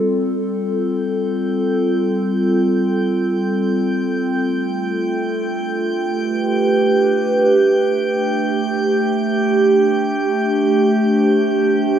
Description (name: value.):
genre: ambient.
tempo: free time.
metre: none.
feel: none.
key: unclear.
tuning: A4 = 439 Hz.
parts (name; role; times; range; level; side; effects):
warbly tape-like pad; sustained chords; 0.0-12.0 s; G3 to C5; -16 LUFS; right 1 dB; chorus, built-in reverb.
drifting glass-harmonics texture; texture; 1.0-12.0 s; G5 to G6; -26 LUFS; right 1 dB; chorus, built-in reverb.
room: wet huge ambient reverb, RT60 7.3 s.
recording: cassette tape.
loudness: -15 LUFS.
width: side -9 dB against mid.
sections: 0.0-12.0 A section.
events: fade-in on synth texture 0.0-12.0.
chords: 0.0 F; 4.4 G7; 8.8 D5.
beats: free time.